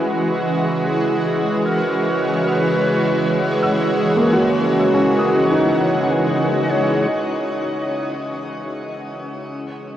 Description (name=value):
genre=ambient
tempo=77 BPM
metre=3/4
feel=straight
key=C# dorian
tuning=A4 = 444 Hz
part: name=clear clarinet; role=melody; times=0.0-7.1 s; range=E4 to D#5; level=-23 LUFS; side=equal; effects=tape echo
part: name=shimmering ambient pad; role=sustained chords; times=0.0-10.0 s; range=E3 to C#5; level=-20 LUFS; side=right 1 dB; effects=chorus, built-in reverb
part: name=analog drone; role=drone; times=0.0-10.0 s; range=C#3 to G#3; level=-26 LUFS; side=left 1 dB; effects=chorus
part: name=felt-muted upright piano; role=arpeggios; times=3.6-7.6 s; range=A#3 to E6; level=-22 LUFS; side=equal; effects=tape echo
room=wet shimmer reverb, RT60 7.3 s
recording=worn, warbling old tape, cassette tape, warbly pitch drift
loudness=-16 LUFS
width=side -11 dB against mid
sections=0.0-7.1 A section; 7.1-10.0 B section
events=fade-in on synth drone 0.0-7.1; fade-in on clarinet 0.0-7.1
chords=0.0 C#m; 2.4 F#7sus4; 7.1 C#madd9; 9.4 F#7sus2/C#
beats=| 0.09 0.87 1.65 | 2.43 3.21 3.99 | 4.77 5.55 6.33 | 7.11 7.89 8.67 | 9.45